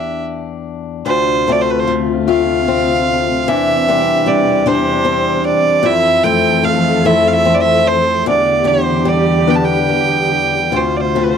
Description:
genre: celtic folk, Celtic slow air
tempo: 49 BPM (dotted quarters)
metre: 6/8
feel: rubato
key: unclear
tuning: A4 = 440 Hz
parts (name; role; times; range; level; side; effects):
- clear fiddle; melody; 0.0-11.4 s; B4 to A5; -15 LUFS; right 5 dB; none
- picked swing-style acoustic guitar; accompaniment; 0.0-11.4 s; D2 to G4; -16 LUFS; left 11 dB; none
- warm studio string section; sustained chords; 1.1-11.4 s; D2 to A4; -19 LUFS; right 3 dB; stereo widening
room: light reverb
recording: dry, close 1970s-style studio recording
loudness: -12 LUFS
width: side -7 dB against mid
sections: 0.0-1.1 A section; 1.1-11.4 B section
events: none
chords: 0.0 Em7; 1.1 Dm7; 3.5 Cadd9/E; 5.8 Fmaj7; 8.3 Em7; 10.7 Dm7

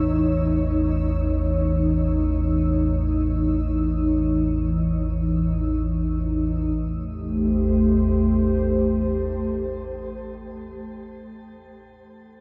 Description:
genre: dark ambient drone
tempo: free time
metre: none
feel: none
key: unclear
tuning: A4 = 439 Hz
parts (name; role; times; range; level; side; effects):
- sweeping resonant pad; sustained chords; 0.0-10.4 s; E3 to C#5; -26 LUFS; equal; lush chorus, shimmer reverb
- deep rumbling drone; drone; 0.0-10.1 s; A1 to E2; -26 LUFS; equal; built-in reverb
- bubbling stepped-filter texture; texture; 0.0-6.8 s; E6; -48 LUFS; equal; chorus, built-in reverb, shimmer reverb
room: wet huge ambient reverb, RT60 7.4 s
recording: dark, warm production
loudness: -23 LUFS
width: mono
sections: 0.0-6.8 A section; 6.8-11.2 B section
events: fade-out on synth texture 0.0-6.8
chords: 0.0 C#madd9; 6.8 Am7

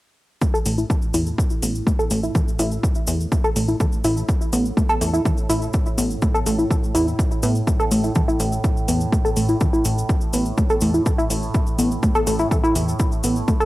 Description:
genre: melodic techno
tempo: 124 BPM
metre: 4/4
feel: straight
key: unclear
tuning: A4 = 440 Hz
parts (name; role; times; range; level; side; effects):
- tight sequenced synth; arpeggios; 0.4-13.7 s; E3 to A4; -22 LUFS; equal; chorus, sidechain pumping, cassette tape, analog delay
- overtone-sweeping drone; drone; 0.7-13.7 s; A2; -30 LUFS; right 1 dB; chorus, built-in reverb, sidechain pumping, cassette tape
- electronic kick drum; drums; 0.4-13.6 s; none; -21 LUFS; equal; overdrive
- cabasa; percussion; 0.4-13.7 s; none; -32 LUFS; left 2 dB; none
- plucky analog bass; bass; 0.7-13.4 s; A1 to A2; -23 LUFS; equal; tube saturation, sidechain pumping
- electronic hi-hat; drums; 0.7-13.3 s; none; -32 LUFS; equal; overdrive, sidechain pumping on hats
room: light reverb, digital ambience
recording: home recording on cassette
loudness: -18 LUFS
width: side -17 dB against mid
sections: 0.4-13.7 A section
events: filter sweep on synth arpeggio sound 0.4-13.7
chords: 0.4 A5

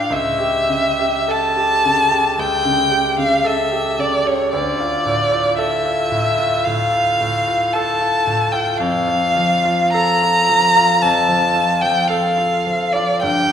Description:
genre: classical, romantic duo for violin and grand piano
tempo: 55 BPM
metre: 4/4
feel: uneven beats, rubato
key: unclear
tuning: A4 = 440 Hz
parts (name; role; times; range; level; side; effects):
- warm violin; melody; 0.0-13.5 s; C#5 to Bb5; -16 LUFS; left 1 dB; none
- bright concert grand piano; accompaniment; 0.0-13.5 s; C#2 to A4; -20 LUFS; right 1 dB; none
room: wet recital hall reverb, RT60 1.8 s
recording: recorded in a church or concert hall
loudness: -14 LUFS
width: side -8 dB against mid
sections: 0.0-13.5 A section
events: none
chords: 0.1 A7/C#; 4.5 Dm; 8.8 Fadd11

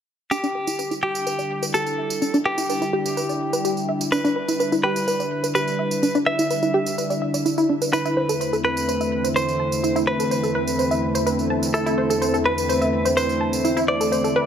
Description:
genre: progressive house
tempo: 126 BPM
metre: 4/4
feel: straight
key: E minor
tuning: A4 = 439 Hz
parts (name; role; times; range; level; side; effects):
- direct-recorded clean electric guitar; melody; 0.3-14.5 s; G4 to E5; -24 LUFS; equal; vintage 12-bit sampler grit, tape echo
- lush unison pad; sustained chords; 0.8-14.5 s; E2 to E4; -25 LUFS; left 1 dB; chorus
- wide unison pluck; arpeggios; 0.3-14.4 s; D4 to A5; -23 LUFS; equal; vintage 12-bit sampler grit, digital delay
- tambourine; drums; 0.3-14.3 s; none; -31 LUFS; right 4 dB; overdrive
room: light reverb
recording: none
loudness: -19 LUFS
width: side -8 dB against mid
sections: 0.3-14.5 A section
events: filter sweep on synth pluck 0.3-14.5; filter sweep on analog synth pad 0.3-14.5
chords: 0.3 Em7; 7.9 Amadd9/E

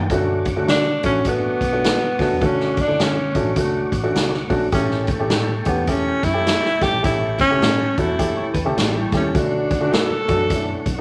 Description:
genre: uptempo 1960s-style soul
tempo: 104 BPM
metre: 4/4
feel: swing 62% on 8ths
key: D major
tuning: A4 = 440 Hz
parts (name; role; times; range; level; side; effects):
- tonewheel organ; sustained chords; 0.0-11.0 s; D5 to D6; -36 LUFS; equal; slow rotary speaker, overdrive, chorus vibrato
- warm upright piano; accompaniment; 0.1-11.0 s; A3 to G4; -25 LUFS; equal; none
- vintage muted fingered electric bass; bass; 0.1-11.0 s; A1 to D3; -30 LUFS; equal; none
- swinging big-band drum kit; drums; 0.1-11.0 s; hi-hat, kick drum, snare drum; -25 LUFS; equal; none
- congas; percussion; 0.5-11.0 s; none; -38 LUFS; equal; none
- breathy tenor saxophone; melody; 0.7-10.9 s; A3 to A4; -23 LUFS; equal; none
- hollow-body jazz guitar; riff; 8.4-9.3 s; G3 to C#5; -29 LUFS; equal; none
room: moderate large studio reverb, RT60 0.9 s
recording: none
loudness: -19 LUFS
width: mono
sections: 0.1-11.0 A section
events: tenor saxophone solo 0.1-11.0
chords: 0.1 Dmaj7; 4.7 A7; 9.3 Dmaj7

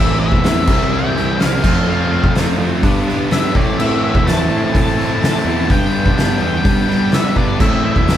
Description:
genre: quiet-loud alternative rock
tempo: 126 BPM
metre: 4/4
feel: straight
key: A minor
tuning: A4 = 440 Hz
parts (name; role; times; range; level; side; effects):
- octave-fuzz lead guitar; melody; 0.0-8.2 s; D5 to A5; -22 LUFS; left 3 dB; distortion
- mellow tonewheel organ; sustained chords; 0.0-8.2 s; G4 to C6; -31 LUFS; equal; none
- distorted electric guitar; riff; 0.0-8.2 s; G2 to F4; -22 LUFS; equal; overdrive
- fuzz guitar; riff; 0.0-8.2 s; G2 to F4; -21 LUFS; right 1 dB; distortion
- fuzz picked electric bass; bass; 0.0-8.2 s; A1 to G3; -20 LUFS; equal; overdrive
- oversized low-tuned drum kit; drums; 0.3-8.2 s; crash cymbal, hi-hat, kick drum, snare drum; -17 LUFS; equal; none
room: light reverb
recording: band playing live in one room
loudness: -13 LUFS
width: side -11 dB against mid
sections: 0.0-8.2 A section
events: none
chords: 0.0 Am; 0.7 C; 1.6 F; 2.8 G; 3.5 Am; 5.7 G; 7.6 Am

